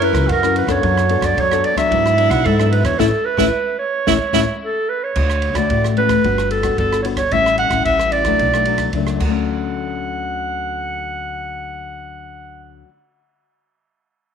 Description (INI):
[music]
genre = samba and choro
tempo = 111 BPM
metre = 4/4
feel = straight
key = D major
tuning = A4 = 438 Hz
[part]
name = mellow clarinet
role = melody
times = 0.0-12.8 s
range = A4 to F#5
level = -19 LUFS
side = right 2 dB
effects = slapback echo
[part]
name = breathy tenor saxophone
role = second line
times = 0.0-4.4 s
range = E4 to A#4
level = -22 LUFS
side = right 9 dB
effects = none
[part]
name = nylon-string guitar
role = accompaniment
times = 0.0-13.0 s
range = F#2 to A#4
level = -22 LUFS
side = left 13 dB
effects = none
[part]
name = upright bass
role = bass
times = 0.0-12.8 s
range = G1 to G#2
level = -22 LUFS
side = equal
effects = none
[part]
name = open jazz drum kit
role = drums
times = 0.0-9.3 s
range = crash cymbal, kick drum, ride cymbal, rim click, snare drum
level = -26 LUFS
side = right 3 dB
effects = none
[sound]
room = moderate spring reverb, RT60 1.7 s, studio reverb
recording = 1960s-style stereo with parts hard left and right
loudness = -15 LUFS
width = side -7 dB against mid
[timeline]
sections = 0.0-5.2 A section; 5.2-9.5 B section; 9.5-13.8 C section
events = band accent 3.0-5.2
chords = 0.0 F#7; 0.8 Bm7/F#; 1.9 E9; 3.0 A; 5.2 Dmaj7; 6.2 Gmaj7; 7.3 A7; 8.4 Bm7; 9.2 Dmaj7